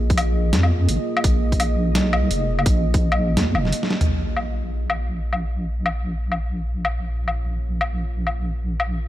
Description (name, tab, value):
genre	half-time drum and bass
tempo	169 BPM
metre	4/4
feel	swing 58% on 16ths, half-time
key	Bb minor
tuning	A4 = 438 Hz
part	deep dark ambient pad	sustained chords	0.0-9.1 s	Bb3 to Eb5	-29 LUFS	right 2 dB	chorus, built-in reverb, sidechain pumping
part	deep soft wobble bass	bass	0.0-9.1 s	F1 to F2	-22 LUFS	equal	chorus
part	boom bap sampler-style drum kit	drums	0.1-8.9 s	hi-hat, snare drum, toms, woodblock	-24 LUFS	left 1 dB	low-pass filter on hats, studio reverb, low-pass filter on perc, low-pass filter on snare, low-pass filter on toms
part	electronic kick drum	drums	0.1-3.0 s	none	-19 LUFS	equal	overdrive, studio reverb
room	light reverb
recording	none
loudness	-19 LUFS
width	side -14 dB against mid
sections	0.0-4.1 A section; 4.1-9.1 B section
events	drum fill 3.8; band accent 3.9; filter sweep on ambient pad 4.1-9.1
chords	0.0 Bb5; 4.1 Bbm